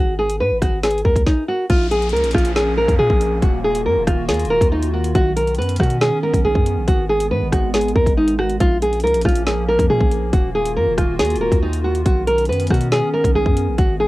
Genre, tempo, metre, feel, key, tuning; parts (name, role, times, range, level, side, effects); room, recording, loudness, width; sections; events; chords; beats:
hip hop, drill; 139 BPM; 4/4; half-time; Bb phrygian; A4 = 441 Hz
nylon-string guitar; melody; 0.0-14.1 s; Eb4 to Cb5; -18 LUFS; equal; low-pass filter, cassette tape, analog delay
long sustained 808-style bass; bass; 0.0-14.1 s; Eb1 to B2; -22 LUFS; equal
drill drum kit; drums; 0.3-13.9 s; hi-hat, kick drum, rim click, snare drum; -18 LUFS; equal
hollow soft pad; sustained chords; 2.0-14.1 s; Eb3 to Gb4; -26 LUFS; right 1 dB; chorus, cassette tape
downlifter; sound effects; 1.7-5.2 s; -34 LUFS; equal
light reverb; home recording on cassette; -15 LUFS; side -18 dB against mid
0.0-1.7 A section; 1.7-14.1 B section
0.0 Ab5; 1.7 Bbm; 3.4 Ebmadd9; 5.2 Badd9; 6.9 Abm; 8.6 Bbm; 10.3 Ebmadd9; 12.1 Badd9
0.40 0.83 1.26 | 1.70 2.13 2.56 2.99 | 3.42 3.85 4.29 4.72 | 5.15 5.58 6.01 6.45 | 6.88 7.31 7.74 8.17 | 8.60 9.04 9.47 9.90 | 10.33 10.76 11.19 11.62 | 12.06 12.49 12.92 13.35 | 13.78